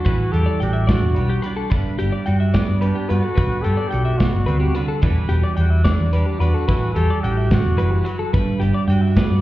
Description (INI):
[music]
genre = math rock and midwest emo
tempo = 73 BPM (dotted quarters)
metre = 6/8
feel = straight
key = G major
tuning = A4 = 436 Hz
[part]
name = breathy trumpet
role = melody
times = 0.0-8.1 s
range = D4 to A4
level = -26 LUFS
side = left 1 dB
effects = analog delay
[part]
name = twelve-string electric guitar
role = accompaniment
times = 0.0-9.4 s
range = G2 to B4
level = -24 LUFS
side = right 4 dB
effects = lush chorus
[part]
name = twelve-string electric guitar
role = arpeggios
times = 0.0-9.4 s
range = G4 to G5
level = -28 LUFS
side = left 4 dB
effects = none
[part]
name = hollow-body short-scale picked electric bass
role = bass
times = 0.1-9.4 s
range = E1 to G2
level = -18 LUFS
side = equal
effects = none
[part]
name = modern studio drum kit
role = drums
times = 0.1-9.3 s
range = hi-hat, kick drum, snare drum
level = -20 LUFS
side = equal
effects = none
[sound]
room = little or no reverb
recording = heard muffled through a wall, stone room reverb, EQ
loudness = -16 LUFS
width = side -16 dB against mid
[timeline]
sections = 0.0-9.4 A section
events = none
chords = 0.0 Em9; 1.7 Gmaj7; 5.0 Em9; 8.3 Gmaj7